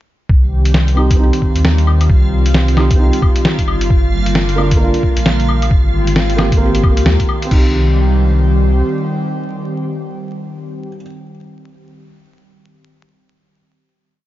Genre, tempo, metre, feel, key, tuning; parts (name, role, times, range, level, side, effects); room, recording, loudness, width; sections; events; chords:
future garage; 133 BPM; 4/4; swing 60% on 16ths; C minor; A4 = 435 Hz
airy breathy pad; sustained chords; 0.3-10.9 s; D3 to G4; -20 LUFS; equal; chorus, sidechain pumping
warm sub bass; bass; 0.3-8.8 s; G1 to Eb2; -14 LUFS; equal; sidechain pumping
electronic kick drum; drums; 0.3-7.6 s; -14 LUFS; equal; studio reverb
backwards swelling texture; texture; 1.5-7.5 s; F4 to F5; -26 LUFS; left 2 dB; built-in reverb
lo-fi sampler-style drum kit; drums; 0.7-7.6 s; claves, crash cymbal, hi-hat, snare drum; -18 LUFS; equal; studio reverb
felt-muted upright piano; accompaniment; 0.9-11.0 s; Bb3 to G4; -21 LUFS; right 2 dB; sidechain pumping, ping-pong delay
light reverb; vinyl crackle, nothing above 7.4 kHz; -11 LUFS; side -14 dB against mid
0.3-7.5 groove; 7.5-11.1 final chord
0.3 Cm; 3.9 Gm7; 5.7 Abmaj7; 7.5 Cm